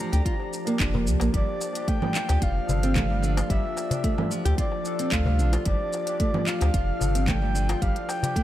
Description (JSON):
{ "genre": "organic downtempo", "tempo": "111 BPM", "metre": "4/4", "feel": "straight", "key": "unclear", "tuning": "A4 = 440 Hz", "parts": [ { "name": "breathy flute-like synth lead", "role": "melody", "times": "0.0-8.4 s", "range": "D5 to Bb5", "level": "-32 LUFS", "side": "left 1 dB", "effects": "chorus, tape echo" }, { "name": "barky tine electric piano", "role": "accompaniment", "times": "0.0-8.4 s", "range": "F3 to A4", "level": "-34 LUFS", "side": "left 4 dB", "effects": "overdrive, wide subtle chorus, sidechain pumping, tape echo" }, { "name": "warbly tape-like pad", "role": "sustained chords", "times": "0.0-8.4 s", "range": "F3 to D5", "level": "-35 LUFS", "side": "right 3 dB", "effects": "chorus, built-in reverb, sidechain pumping" }, { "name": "nylon-string guitar", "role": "arpeggios", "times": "0.0-8.4 s", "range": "D3 to G4", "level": "-31 LUFS", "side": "right 2 dB", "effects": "tape echo" }, { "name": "warm sub bass", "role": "bass", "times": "0.1-7.9 s", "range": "F1 to D2", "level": "-24 LUFS", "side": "equal", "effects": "sidechain pumping" }, { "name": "organic electronic drum kit", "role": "drums", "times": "0.1-8.4 s", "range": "congas, handclaps, hi-hat, shaker", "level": "-31 LUFS", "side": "right 2 dB", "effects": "overdrive" }, { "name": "electronic kick drum", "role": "drums", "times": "0.3-8.4 s", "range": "none", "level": "-27 LUFS", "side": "equal", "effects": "none" }, { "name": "darbuka", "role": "percussion", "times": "0.4-8.3 s", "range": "none", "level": "-32 LUFS", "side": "left 3 dB", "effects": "none" } ], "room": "light reverb, digital ambience", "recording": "none", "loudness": "-22 LUFS", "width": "side -13 dB against mid", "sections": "0.0-8.4 A section", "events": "none", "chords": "0.0 Gm7" }